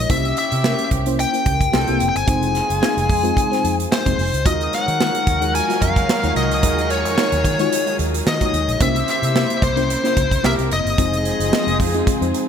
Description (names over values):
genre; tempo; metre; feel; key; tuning
polished 1980s jazz-funk pop; 110 BPM; 4/4; swing 54% on 16ths; unclear; A4 = 440 Hz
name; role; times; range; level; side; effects
bluesy overdriven lead guitar; melody; 0.0-11.8 s; C5 to Ab5; -21 LUFS; left 4 dB; distortion
FM electric piano with soft pad layer; accompaniment; 0.0-12.5 s; Ab3 to Bb5; -23 LUFS; left 2 dB; tremolo, analog chorus
vintage muted fingered electric bass; bass; 0.0-12.3 s; F1 to Eb3; -23 LUFS; right 1 dB; none
mellow horn section; second line; 0.1-12.5 s; Bb3 to C5; -27 LUFS; right 5 dB; none
modern studio drum kit; drums; 0.1-12.5 s; hi-hat, kick drum, snare drum; -22 LUFS; right 1 dB; gated reverb
warm studio string section; sustained chords; 4.5-12.5 s; C3 to Ab4; -29 LUFS; equal; none
room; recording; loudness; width
light reverb, small room ambience; bright 1980s-style digital production; -16 LUFS; side -8 dB against mid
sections
0.0-12.5 A section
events
FM electric piano fill 12.1-12.5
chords
0.1 C7b9; 1.7 C7; 2.3 Fm7; 4.5 Ebm11; 8.8 C7b9; 10.4 C7; 11.0 Fm7